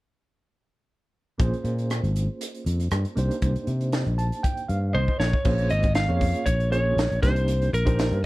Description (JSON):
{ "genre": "electric jazz fusion", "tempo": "118 BPM", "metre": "4/4", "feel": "swing 53% on 16ths", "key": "Bb dorian", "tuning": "A4 = 439 Hz", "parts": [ { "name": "barky reed electric piano", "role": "accompaniment", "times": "1.4-8.2 s", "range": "Bb3 to A5", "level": "-31 LUFS", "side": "right 2 dB", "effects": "overdrive, fast tremolo" }, { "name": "sustaining fretless electric bass", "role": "bass", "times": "1.4-8.3 s", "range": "Ab1 to C3", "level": "-24 LUFS", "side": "equal", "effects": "none" }, { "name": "crisp fusion drum kit", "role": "drums", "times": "1.4-8.2 s", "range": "crash cymbal, hi-hat, kick drum, rim click, snare drum, toms", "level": "-27 LUFS", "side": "equal", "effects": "none" }, { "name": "lightly driven lead guitar", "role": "melody", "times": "4.9-8.2 s", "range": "Bb4 to F5", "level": "-26 LUFS", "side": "equal", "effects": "none" } ], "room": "little or no reverb", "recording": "none", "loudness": "-22 LUFS", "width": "side -19 dB against mid", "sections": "1.4-5.5 A section; 5.5-8.3 B section", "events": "reed electric piano fill 3.9-5.5; drum fill 4.9-5.5", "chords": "1.4 Bbm9; 3.2 Cm9; 5.2 Bbm; 5.5 Bbm9; 7.2 Cm9" }